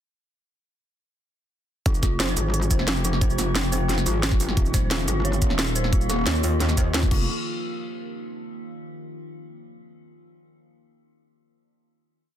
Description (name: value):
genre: dark technical drum and bass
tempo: 177 BPM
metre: 4/4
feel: straight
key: F minor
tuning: A4 = 441 Hz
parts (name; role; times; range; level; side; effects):
- metallic inharmonic drone; sustained chords; 2.3-7.3 s; Eb3 to G4; -32 LUFS; left 1 dB; chorus, built-in reverb, phaser, sidechain pumping
- dark detuned synth bell; arpeggios; 1.9-7.3 s; F4 to Db5; -31 LUFS; equal; chorus, sidechain pumping, tape echo
- metallic wobble bass; bass; 1.9-7.3 s; Eb1 to Eb2; -25 LUFS; equal; chorus, tube saturation, sidechain pumping
- drum and bass drum kit; drums; 1.9-7.2 s; crash cymbal, hi-hat, shaker, snare drum; -27 LUFS; right 1 dB; none
- electronic kick drum; drums; 1.9-7.2 s; none; -22 LUFS; equal; none
room: light reverb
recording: dense, heavily limited modern master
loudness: -20 LUFS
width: side -10 dB against mid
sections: 1.9-7.3 drop; 7.3-8.6 final hit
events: drop 1.9-7.3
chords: 1.9 Fm; 4.6 Ebadd9; 7.1 F5; 7.3 N.C.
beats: | 1.86 2.20 2.54 2.88 | 3.21 3.55 3.89 4.23 | 4.57 4.91 5.25 5.59 | 5.93 6.26 6.60 6.94